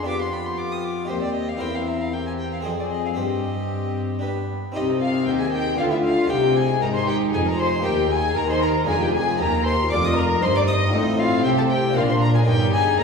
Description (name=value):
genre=classical, baroque-style concerto movement with solo episodes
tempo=116 BPM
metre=3/4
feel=straight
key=C minor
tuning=A4 = 440 Hz
part: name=rich chamber violin section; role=melody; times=0.0-13.0 s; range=G4 to Eb6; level=-29 LUFS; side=left 3 dB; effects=none
part: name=rich violin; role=melody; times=0.0-13.0 s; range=C5 to Eb6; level=-30 LUFS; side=equal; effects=none
part: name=rich chamber violin section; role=second line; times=0.0-13.0 s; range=Eb4 to Eb5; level=-26 LUFS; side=left 3 dB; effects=none
part: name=harpsichord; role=accompaniment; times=0.0-13.0 s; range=Eb2 to C5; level=-27 LUFS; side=left 2 dB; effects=none
part: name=warm chamber viola section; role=accompaniment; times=0.0-13.0 s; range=B3 to Ab4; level=-28 LUFS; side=left 3 dB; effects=none
part: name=dark chamber cello section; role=bass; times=0.0-13.0 s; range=Eb2 to Eb3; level=-26 LUFS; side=right 1 dB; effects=none
part: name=rich chamber double bass section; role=bass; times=4.8-13.0 s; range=F1 to Eb2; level=-27 LUFS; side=right 1 dB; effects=none
room=wet concert hall reverb, RT60 1.8 s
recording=heard from further back in the room, studio ambience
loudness=-19 LUFS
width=side -5 dB against mid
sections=0.0-4.8 A section; 4.8-13.0 B section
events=none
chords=0.1 G7/F; 1.1 Cm/Eb; 1.6 C7/E; 2.7 Fm; 3.2 Cm/G; 4.2 G; 4.8 Cm; 5.8 Bdim/D; 6.3 Cm; 7.9 Eb; 8.9 Ddim/F; 9.4 Eb; 10.9 F/A; 12.0 Bb; 12.5 Eb7/G